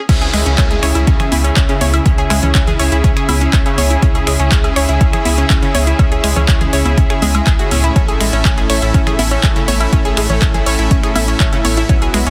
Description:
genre	progressive house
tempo	122 BPM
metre	4/4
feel	straight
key	C# minor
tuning	A4 = 438 Hz
part	rich studio string section	sustained chords	0.1-12.3 s	C#3 to G#4	-27 LUFS	equal	sidechain pumping
part	analog pluck	arpeggios	0.1-12.3 s	C#3 to C#6	-22 LUFS	equal	chorus, sidechain pumping, delay
part	soft supersaw	stabs	0.1-12.3 s	A2 to E5	-22 LUFS	equal	sidechain pumping, delay
part	saturated sub bass	bass	0.1-12.3 s	A1 to C#2	-20 LUFS	equal	tube saturation, sidechain pumping
part	deep house drum kit	drums	0.1-12.3 s	crash cymbal, finger snaps, handclaps, hi-hat, ride cymbal	-23 LUFS	equal	overdrive, sidechain pumping on hats, small room ambience, sidechain pumping on cymbals
part	electronic kick drum	drums	0.1-12.0 s	none	-16 LUFS	equal	overdrive, small room ambience
part	woodblock and congas	percussion	0.1-12.1 s	none	-25 LUFS	equal	overdrive, sidechain pumping on perc, small room ambience
part	downlifter	sound effects	0.1-4.0 s	none	-30 LUFS	equal	none
room	light reverb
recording	dense, heavily limited modern master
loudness	-13 LUFS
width	mono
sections	0.1-12.3 A section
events	drop 0.1-12.3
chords	0.1 C#m; 8.0 A

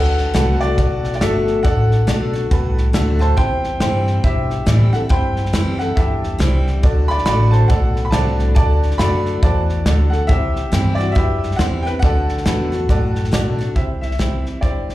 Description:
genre	honky-tonk and classic country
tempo	139 BPM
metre	4/4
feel	swing 60% on 8ths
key	D mixolydian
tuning	A4 = 440 Hz
part	bright upright piano	melody	0.0-14.9 s	F#4 to B5	-23 LUFS	equal	slapback echo, analog delay
part	picked steel-string acoustic guitar	accompaniment	0.0-14.9 s	G2 to F#4	-24 LUFS	left 2 dB	slapback echo
part	tack piano	accompaniment	0.0-14.9 s	E4 to B5	-28 LUFS	right 3 dB	slapback echo
part	upright bass	bass	0.0-14.9 s	G1 to B2	-18 LUFS	equal	none
part	natural country drum kit	drums	0.2-14.9 s	hi-hat, kick drum, snare drum	-20 LUFS	equal	none
room	little or no reverb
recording	live gig heard through the venue's PA, club reverb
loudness	-14 LUFS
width	side -15 dB against mid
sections	0.0-13.8 A section; 13.8-14.9 B section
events	none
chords	0.0 D; 3.4 C; 6.8 D; 10.3 C; 12.0 D; 13.8 C

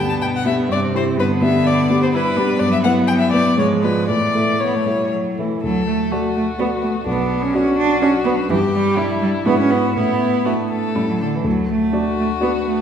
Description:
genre	quick classical-period movement for piano quartet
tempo	124 BPM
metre	3/4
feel	rubato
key	D major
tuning	A4 = 442 Hz
part	rich violin	melody	0.0-12.8 s	D4 to A5	-22 LUFS	left 4 dB	none
part	clear cello	second line	0.0-12.8 s	B2 to D4	-20 LUFS	right 3 dB	none
part	dark baby grand piano	accompaniment	0.0-12.8 s	B1 to E5	-20 LUFS	left 1 dB	none
part	rich viola	accompaniment	0.0-12.8 s	G#3 to F#4	-24 LUFS	equal	none
room	wet scoring stage reverb, RT60 1.7 s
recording	heard from further back in the room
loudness	-16 LUFS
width	side -8 dB against mid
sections	0.0-5.6 A section; 5.6-12.8 B section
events	none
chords	0.0 G; 0.7 C/G; 1.2 G; 2.6 Em/G; 3.6 G#dim7; 4.1 A; 5.6 D; 7.1 Bm; 8.5 Em7/G; 9.5 E7/G#; 10.0 Asus4; 11.0 A; 11.5 D

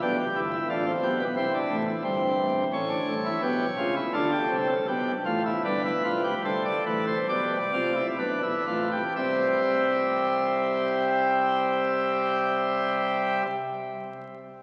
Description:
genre	classical, baroque-style 3-part fugue for pipe organ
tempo	60-89 BPM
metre	4/4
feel	straight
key	C major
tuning	A4 = 440 Hz
part	pipe organ, plenum	solo	0.0-13.5 s	F1 to E5	-26 LUFS	equal	none
room	wet cathedral reverb, RT60 4.9 s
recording	very old 78 rpm record, vinyl crackle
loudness	-26 LUFS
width	mono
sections	0.0-9.2 A section; 9.2-13.1 B section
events	slowing down 1.4-9.2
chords	0.0 G; 1.4 C; 2.7 A7; 4.1 Dm; 5.6 G7; 9.2 C

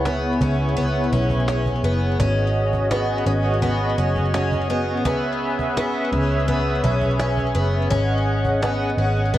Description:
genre	dream pop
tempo	84 BPM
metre	4/4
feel	straight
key	C# minor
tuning	A4 = 438 Hz
part	warm analog pad	sustained chords	0.0-9.4 s	B3 to F#5	-24 LUFS	equal	chorus, tremolo
part	picked twelve-string acoustic guitar	arpeggios	0.0-9.4 s	B3 to C#4	-24 LUFS	left 1 dB	wide subtle chorus, ping-pong delay
part	vintage muted picked electric bass	bass	0.0-9.4 s	F#1 to C#2	-22 LUFS	equal	none
part	cajon	drums	0.1-9.4 s	none	-28 LUFS	equal	none
room	light reverb, studio reverb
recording	worn, warbling old tape, cassette tape, warbly pitch drift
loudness	-18 LUFS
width	side -13 dB against mid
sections	0.0-9.4 A section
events	none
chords	0.0 C#m7; 2.2 G#7sus4; 5.1 C#m7; 7.9 G#7sus4

